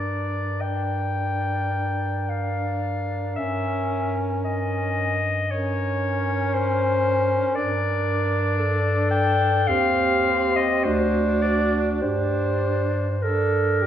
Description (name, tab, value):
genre	classical, lyrical piece for single-reed quartet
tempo	45-59 BPM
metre	4/4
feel	rubato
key	G minor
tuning	A4 = 439 Hz
part	clear clarinet	melody	0.0-13.9 s	Bb4 to G5	-25 LUFS	left 4 dB	none
part	clear alto saxophone	second line	0.0-13.9 s	F#4 to Bb4	-28 LUFS	right 6 dB	none
part	warm tenor saxophone	accompaniment	0.0-13.9 s	C4 to D4	-28 LUFS	equal	none
part	mellow bass clarinet	bass	0.0-13.9 s	D2 to G2	-26 LUFS	equal	none
room	wet recital hall reverb, RT60 1.6 s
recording	heard from further back in the room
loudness	-21 LUFS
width	side -10 dB against mid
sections	0.0-13.9 A section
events	none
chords	0.0 Gm; 3.4 Gdim; 7.6 Gm; 9.7 Cm/Eb; 10.9 D7; 12.0 Gm